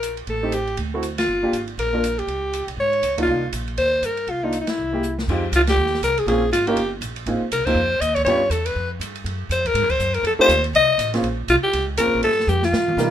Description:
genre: jazz, small-group swing and bop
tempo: 242 BPM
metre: 4/4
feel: swing 59% on 8ths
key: C minor, F minor from 5.3 s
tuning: A4 = 440 Hz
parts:
  - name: growling alto saxophone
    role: melody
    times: 0.0-13.1 s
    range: Eb4 to Eb5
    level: -19 LUFS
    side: left 1 dB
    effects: none
  - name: upright bass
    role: bass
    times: 0.0-13.1 s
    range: G1 to B2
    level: -26 LUFS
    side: right 1 dB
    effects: none
  - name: open jazz drum kit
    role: drums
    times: 0.0-13.0 s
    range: crash cymbal, hi-hat, kick drum, ride cymbal, snare drum, toms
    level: -30 LUFS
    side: right 1 dB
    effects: none
  - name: warm baby grand piano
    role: accompaniment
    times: 0.4-13.1 s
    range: G3 to Bb4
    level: -24 LUFS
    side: right 1 dB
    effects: none
room: moderate club reverb, RT60 0.7 s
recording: minimal, uncompressed stereo recording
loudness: -18 LUFS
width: side -10 dB against mid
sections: 0.0-5.3 A section; 5.3-13.1 B section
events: band accent 1.2, 3.2, 4.7, 5.7, 7.6, 9.9; drum fill 5.0, 12.5-13.0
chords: 0.3 Am7b5; 0.8 D7; 1.3 Gm7; 2.3 Db5; 3.3 Cm11; 4.8 C7b13; 5.3 Fm7; 6.3 Bbm7; 6.8 Gm; 7.3 Ab6; 8.3 G7#11; 9.3 Gbmaj7; 10.2 F7; 11.2 Bbm9; 12.2 Fadd9

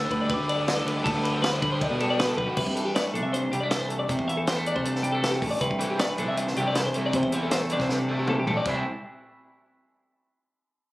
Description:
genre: math rock and midwest emo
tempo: 158 BPM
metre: 4/4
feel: straight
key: C major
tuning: A4 = 441 Hz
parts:
  - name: glockenspiel with rubber mallets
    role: melody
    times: 0.0-2.2 s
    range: D6 to E6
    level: -35 LUFS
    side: left 1 dB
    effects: slapback echo
  - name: twelve-string electric guitar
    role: arpeggios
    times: 0.0-8.9 s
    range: F#4 to E5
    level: -28 LUFS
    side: left 2 dB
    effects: slapback echo
  - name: crunchy overdriven guitar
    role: riff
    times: 0.0-2.6, 5.8-8.8 s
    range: C3 to B4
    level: -33 LUFS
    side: equal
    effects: spring reverb
  - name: fuzz fingered electric bass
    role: bass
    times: 0.0-8.8 s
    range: A1 to D3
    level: -29 LUFS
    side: equal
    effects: overdrive
  - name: compact cocktail drum kit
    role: drums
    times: 0.1-8.7 s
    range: crash cymbal, hi-hat, kick drum, ride cymbal, snare drum, toms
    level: -29 LUFS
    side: equal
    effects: none
  - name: twangy electric guitar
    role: accompaniment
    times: 2.6-8.8 s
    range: G2 to E4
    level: -31 LUFS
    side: right 1 dB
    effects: spring reverb
room: light reverb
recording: recorded on a phone in the room, studio ambience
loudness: -23 LUFS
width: side -18 dB against mid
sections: 0.0-2.6 A section; 2.6-8.7 B section; 8.7-10.2 C section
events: drum fill 2.4, 7.9-8.7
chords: 0.0 Gadd9/D; 2.6 C69; 8.7 C

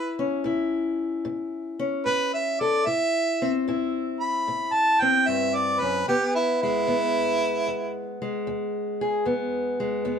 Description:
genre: acoustic country blues, solo or duo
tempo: 75 BPM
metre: 4/4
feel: swing 68% on 8ths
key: unclear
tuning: A4 = 441 Hz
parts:
  - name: warm harmonica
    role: melody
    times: 0.0-8.2 s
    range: E4 to B5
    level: -23 LUFS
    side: right 2 dB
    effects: none
  - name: fingerpicked steel-string acoustic guitar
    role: accompaniment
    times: 0.0-10.2 s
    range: E2 to A4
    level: -26 LUFS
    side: left 2 dB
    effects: none
room: moderate studio reverb, RT60 0.6 s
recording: dark, warm production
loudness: -22 LUFS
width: side -7 dB against mid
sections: 0.0-10.2 A section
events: none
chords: 0.0 A; 2.9 Am7; 6.1 E

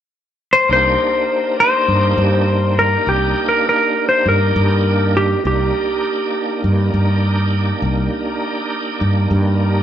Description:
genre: straight-eighth soul blues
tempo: 101 BPM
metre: 4/4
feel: swing 54% on 16ths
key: C minor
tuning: A4 = 440 Hz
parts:
  - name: clean lap steel guitar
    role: melody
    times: 0.5-6.6 s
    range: G4 to C5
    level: -15 LUFS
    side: left 1 dB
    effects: none
  - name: bright tonewheel organ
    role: accompaniment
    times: 0.7-9.8 s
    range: Bb3 to G4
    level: -21 LUFS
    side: right 2 dB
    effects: slow rotary speaker, chorus vibrato
  - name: fretless electric bass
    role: bass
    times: 0.7-9.8 s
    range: C2 to G2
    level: -17 LUFS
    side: equal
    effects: none
room: moderate large studio reverb, RT60 1.0 s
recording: band playing live in one room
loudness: -14 LUFS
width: side -10 dB against mid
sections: 0.7-9.8 A section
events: none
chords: 0.0 N.C.; 0.7 Cm7

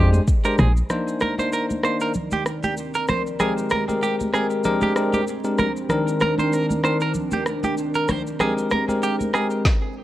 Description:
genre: afrobeats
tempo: 96 BPM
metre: 4/4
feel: swing 55% on 16ths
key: C minor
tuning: A4 = 442 Hz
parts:
  - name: barky tine electric piano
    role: accompaniment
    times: 0.0-9.6 s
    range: Eb3 to C5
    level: -23 LUFS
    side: left 2 dB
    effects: none
  - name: direct-recorded clean electric guitar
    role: riff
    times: 0.0-9.5 s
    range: G4 to C5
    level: -26 LUFS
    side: right 4 dB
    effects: wide subtle chorus, tape echo
  - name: woody log drum bass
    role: bass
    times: 0.0-0.8 s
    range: Bb1 to F2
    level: -16 LUFS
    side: equal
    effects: none
  - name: afro-pop drum kit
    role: drums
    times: 0.1-9.8 s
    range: kick drum, rim click, shaker, snare drum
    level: -24 LUFS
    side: equal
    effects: vintage 12-bit sampler grit
  - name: congas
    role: percussion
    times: 0.1-9.3 s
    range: none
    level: -29 LUFS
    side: right 1 dB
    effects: none
  - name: deep dark ambient pad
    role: sustained chords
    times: 1.7-9.6 s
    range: Eb3 to D5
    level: -28 LUFS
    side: equal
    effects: chorus, built-in reverb
room: light reverb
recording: vinyl crackle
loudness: -19 LUFS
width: side -14 dB against mid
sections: 0.9-10.0 A section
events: none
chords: 0.0 Bb13; 0.9 Cm9; 3.4 Abmaj9; 4.7 Bb13; 5.9 Cm9; 8.4 Abmaj9

